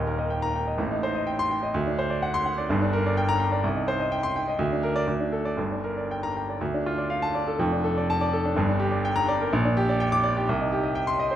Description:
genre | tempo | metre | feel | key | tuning
classical, virtuoso piano study | 125 BPM | 2/4 | rubato | G minor, D minor from 6.6 s | A4 = 439 Hz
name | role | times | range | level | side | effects
warm baby grand piano | solo | 0.0-11.4 s | Eb1 to D6 | -23 LUFS | equal | none
room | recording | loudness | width
wet recital hall reverb, RT60 1.3 s | none | -23 LUFS | side -11 dB against mid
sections
0.0-6.6 A section; 6.6-11.4 B section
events
none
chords
0.0 Eb; 0.8 Am7b5; 1.8 D7; 2.7 Gm; 3.6 Cm; 4.6 Bb/D; 5.1 D5; 5.6 Gm; 6.6 Dm; 7.6 Dm/F; 8.6 Gm; 9.5 Gm/Bb; 10.5 Cm

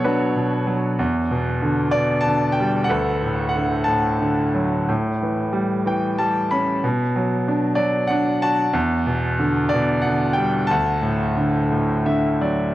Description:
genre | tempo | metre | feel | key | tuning
classical, lyrical solo piano | 62 BPM (dotted quarters) | 6/8 | rubato | D major | A4 = 439 Hz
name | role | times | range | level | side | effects
bright grand piano | solo | 0.0-12.7 s | D2 to B5 | -18 LUFS | equal | analog delay
room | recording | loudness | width
moderate small room reverb, RT60 0.5 s | cassette tape | -18 LUFS | side -15 dB against mid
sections
0.0-12.7 A section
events
grand piano fill 11.7-12.7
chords
0.0 Bm7; 1.0 Em7; 2.9 D6; 4.9 A7; 6.8 Bm; 8.7 Em7; 10.7 D

